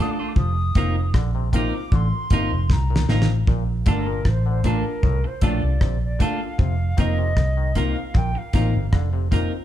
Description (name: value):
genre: roots reggae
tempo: 77 BPM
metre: 4/4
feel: straight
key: Bb major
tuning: A4 = 440 Hz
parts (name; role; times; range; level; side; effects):
- mellow concert flute; melody; 0.0-9.1 s; Bb4 to Eb6; -31 LUFS; equal; none
- clean electric guitar; accompaniment; 0.0-9.5 s; A3 to Bb4; -28 LUFS; right 2 dB; none
- clav; arpeggios; 0.0-9.5 s; A2 to F3; -34 LUFS; left 7 dB; phaser
- dark upright piano; stabs; 0.0-9.6 s; Bb3 to Bb4; -33 LUFS; left 7 dB; none
- vintage muted fingered electric bass; bass; 0.4-9.5 s; F1 to C2; -22 LUFS; equal; none
- damped 70s drum kit; drums; 0.4-9.5 s; hi-hat, kick drum, rim click, snare drum; -21 LUFS; equal; none
room: light reverb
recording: band playing live in one room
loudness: -19 LUFS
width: side -12 dB against mid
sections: 0.0-3.5 A section; 3.5-9.6 B section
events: drum fill 2.7-3.5; flute solo 3.5-9.6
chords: 0.4 F7sus4; 3.5 Bbmaj7; 6.6 F7sus4